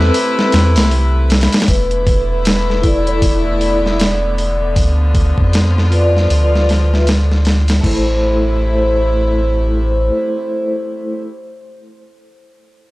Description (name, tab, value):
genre	trip hop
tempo	78 BPM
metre	4/4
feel	swing 60% on 16ths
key	A minor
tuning	A4 = 440 Hz
part	vibraphone with medium mallets	accompaniment	0.0-11.3 s	A3 to E5	-19 LUFS	equal	tremolo, vintage 12-bit sampler grit, low-pass filter, tape echo
part	rich chamber string section	sustained chords	0.0-11.2 s	C3 to B4	-23 LUFS	left 1 dB	none
part	soft dub sub bass	bass	0.0-10.1 s	E1 to F2	-15 LUFS	equal	tube saturation
part	dusty soul sampler-style drum kit	drums	0.0-8.0 s	crash cymbal, hi-hat, kick drum, snare drum	-16 LUFS	equal	overdrive
part	pure breathy sine lead	melody	1.7-11.2 s	B4 to D5	-22 LUFS	equal	wide subtle chorus, tape echo
room	digital ambience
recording	dry, gritty hardware recording, transformer saturation, cassette tape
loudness	-12 LUFS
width	side -19 dB against mid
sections	0.0-1.7 A section; 1.7-7.8 B section; 7.8-10.9 C section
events	kick drops out 0.1-1.7; filter sweep on vibraphone 1.7-7.8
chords	0.0 Amadd9; 1.7 E7sus4; 4.8 Bdim/D; 7.8 Am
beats	0.14 0.91 | 1.68 2.45 3.22 3.99 | 4.76 5.53 6.30 7.07 | 7.83 8.60 9.37 10.14